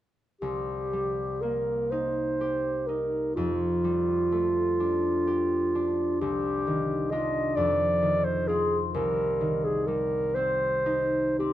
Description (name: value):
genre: classical, impressionist duo for clarinet and harp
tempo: 37-45 BPM (dotted quarters)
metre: 6/8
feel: rubato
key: C minor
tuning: A4 = 440 Hz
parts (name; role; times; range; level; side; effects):
- mellow clarinet; melody; 0.4-11.5 s; F4 to Eb5; -26 LUFS; right 1 dB; none
- concert harp; accompaniment; 0.4-11.5 s; C2 to G4; -29 LUFS; left 2 dB; none
room: light reverb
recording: minimal, uncompressed stereo recording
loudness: -24 LUFS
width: side -13 dB against mid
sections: 0.4-11.5 A section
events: none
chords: 0.4 Cm7; 3.4 F69; 6.2 Cmadd9; 7.6 F5; 8.9 Cm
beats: | 0.41 1.92 | 3.37 4.80 | 6.21 7.57 | 8.95 10.35